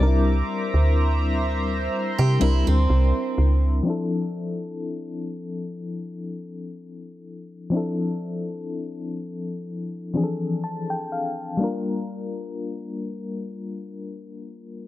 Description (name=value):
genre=R&B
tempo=62 BPM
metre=4/4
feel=swing 54% on 16ths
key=D minor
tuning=A4 = 440 Hz
part: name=FM electric piano with tremolo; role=accompaniment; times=0.0-14.9 s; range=E3 to A5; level=-27 LUFS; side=left 3 dB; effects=none
part: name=chorused pulse-width pad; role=sustained chords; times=0.0-3.8 s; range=C5 to D6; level=-29 LUFS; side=right 2 dB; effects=none
part: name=woody FM bass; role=bass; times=0.0-3.8 s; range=C2 to C3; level=-19 LUFS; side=equal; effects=none
part: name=picked steel-string acoustic guitar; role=arpeggios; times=2.2-3.8 s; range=C4 to G4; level=-30 LUFS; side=right 7 dB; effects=tape echo
room=digital ambience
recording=low-pass filter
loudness=-22 LUFS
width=side -15 dB against mid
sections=0.0-3.9 A section; 3.9-14.9 B section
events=FM electric piano fill 10.2-11.6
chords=0.0 C9; 3.9 Dm9; 11.6 Gm7